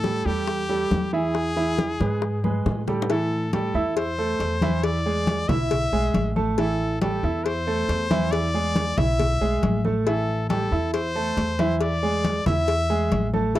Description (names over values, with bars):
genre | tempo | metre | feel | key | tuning
latin, Cuban son and guajira | 138 BPM | 4/4 | straight | A minor | A4 = 439 Hz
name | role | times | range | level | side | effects
brilliant trumpet | melody | 0.0-13.6 s | G4 to E5 | -28 LUFS | left 2 dB | none
clear grand piano | arpeggios | 0.0-13.6 s | E3 to E6 | -25 LUFS | right 3 dB | none
upright bass | bass | 0.0-13.6 s | A1 to A2 | -27 LUFS | equal | none
bongos and cowbell | percussion | 0.0-13.6 s | none | -29 LUFS | left 7 dB | none
congas | percussion | 0.0-13.6 s | none | -27 LUFS | left 2 dB | none
room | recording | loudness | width
light reverb | dry, close 1970s-style studio recording | -21 LUFS | side -14 dB against mid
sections
0.0-3.1 A section; 3.1-13.6 B section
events
drum fill 2.4-3.1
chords
0.0 A5; 1.4 E; 3.1 Am7; 4.8 E7; 6.6 Am7; 8.3 E7; 10.1 Am7; 11.8 E7